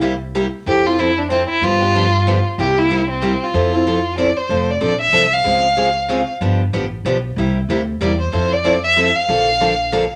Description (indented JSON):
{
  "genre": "acoustic string swing (jazz manouche)",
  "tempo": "188 BPM",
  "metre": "3/4",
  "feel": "swing 58% on 8ths",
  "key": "F major",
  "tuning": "A4 = 440 Hz",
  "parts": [
    { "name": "picked steel-string acoustic guitar", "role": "accompaniment", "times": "0.0-10.0 s", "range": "C3 to A4", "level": "-21 LUFS", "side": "equal", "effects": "none" },
    { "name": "upright bass", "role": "bass", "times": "0.0-10.1 s", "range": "F1 to G2", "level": "-24 LUFS", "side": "equal", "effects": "none" },
    { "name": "warm violin", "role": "melody", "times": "0.7-10.1 s", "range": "C4 to F5", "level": "-19 LUFS", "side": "equal", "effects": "none" }
  ],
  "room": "wet club reverb, RT60 0.7 s",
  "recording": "none",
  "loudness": "-17 LUFS",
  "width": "mono",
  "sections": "0.0-4.5 A section; 4.5-10.2 B section",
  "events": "none",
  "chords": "0.0 C7; 0.7 Fmaj7; 1.6 G7; 2.6 C7; 3.5 Fmaj7; 4.5 F6; 5.5 Dbmaj7; 6.4 G7; 7.4 C7; 8.3 Fmaj7; 9.3 Bbmaj7"
}